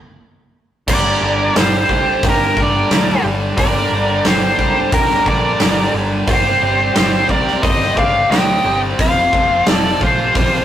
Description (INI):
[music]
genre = hard rock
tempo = 89 BPM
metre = 4/4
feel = straight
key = G minor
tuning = A4 = 440 Hz
[part]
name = high-gain lead guitar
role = melody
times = 0.9-10.6 s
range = Bb4 to G5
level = -17 LUFS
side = left 1 dB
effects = distortion
[part]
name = octave-fuzz lead guitar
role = second line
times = 0.9-10.6 s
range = F4 to Eb5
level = -22 LUFS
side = right 5 dB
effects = distortion, slapback echo
[part]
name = lush unison pad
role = sustained chords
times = 0.9-10.6 s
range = F3 to A5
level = -29 LUFS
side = equal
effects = none
[part]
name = sludgy distorted guitar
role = riff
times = 0.9-10.6 s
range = F2 to C4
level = -21 LUFS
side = equal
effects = overdrive
[part]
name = growling picked electric bass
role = bass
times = 0.9-10.6 s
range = F1 to D2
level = -23 LUFS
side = equal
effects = overdrive
[part]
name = huge arena drum kit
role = drums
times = 0.9-10.5 s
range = crash cymbal, hi-hat, kick drum, snare drum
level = -18 LUFS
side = equal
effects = none
[sound]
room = moderate studio ambience, RT60 0.5 s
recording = rough rehearsal-room recording, warm saturation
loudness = -12 LUFS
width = side -10 dB against mid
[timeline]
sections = 0.9-10.6 A section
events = stop 0.0-0.9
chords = 0.0 N.C.; 0.9 Gm; 6.3 C5/G; 9.0 F5